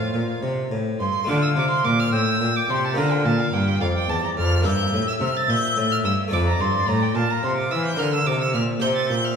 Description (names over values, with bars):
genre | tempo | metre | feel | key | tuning
classical, baroque-style sonata movement with continuo | 72 BPM (dotted quarters) | 6/8 | straight | D minor | A4 = 440 Hz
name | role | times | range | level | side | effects
warm oboe | melody | 0.0-9.4 s | F4 to G5 | -28 LUFS | left 4 dB | none
clear violin | second line | 0.0-9.4 s | F5 to A6 | -25 LUFS | right 3 dB | none
harpsichord | accompaniment | 0.0-9.4 s | E2 to C5 | -26 LUFS | left 1 dB | none
clear cello | bass | 0.0-9.4 s | E2 to E3 | -23 LUFS | equal | none
room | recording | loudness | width
wet recital hall reverb, RT60 1.8 s | heard from further back in the room | -19 LUFS | side -6 dB against mid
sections
0.0-1.3 A section; 1.3-9.4 A section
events
none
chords
0.0 F; 1.3 Dm; 3.0 Bb; 4.6 Gm; 6.3 Dm/F; 8.0 Bb; 8.8 C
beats
0.42 | 1.28 2.13 | 2.97 3.81 | 4.65 5.48 | 6.32 7.15 | 7.99 8.82